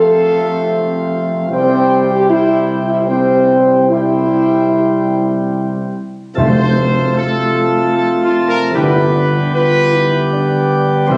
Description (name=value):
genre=classical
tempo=75 BPM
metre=3/4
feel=uneven beats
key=F major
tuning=A4 = 439 Hz
part: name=warm trumpet section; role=melody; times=0.0-11.2 s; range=F4 to G5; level=-22 LUFS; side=equal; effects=none
part: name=clear trombone section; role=sustained chords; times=0.0-11.2 s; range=C3 to A3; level=-24 LUFS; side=equal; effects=none
part: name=mellow French horn section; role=sustained chords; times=0.0-11.2 s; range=C4 to A4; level=-17 LUFS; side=equal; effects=none
part: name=mellow tuba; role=bass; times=0.0-11.2 s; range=F1 to F2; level=-23 LUFS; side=equal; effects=none
part: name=chamber organ, principal chorus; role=sustained chords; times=6.4-11.2 s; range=C3 to A4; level=-17 LUFS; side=equal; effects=none
part: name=timpani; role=percussion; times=6.4-7.5, 11.1-11.2 s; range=F2 to C3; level=-21 LUFS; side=equal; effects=none
room=moderate scoring stage reverb, RT60 1.9 s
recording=recorded on a phone in the room, club reverb, compression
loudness=-14 LUFS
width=mono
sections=0.0-6.4 A section; 6.4-11.2 B section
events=none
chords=0.0 F; 1.5 C; 6.4 F; 8.7 G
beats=0.72 | 1.50 2.28 3.08 | 3.90 4.72 5.54 | 6.37 7.16 7.95 | 8.75 9.53 10.32 | 11.10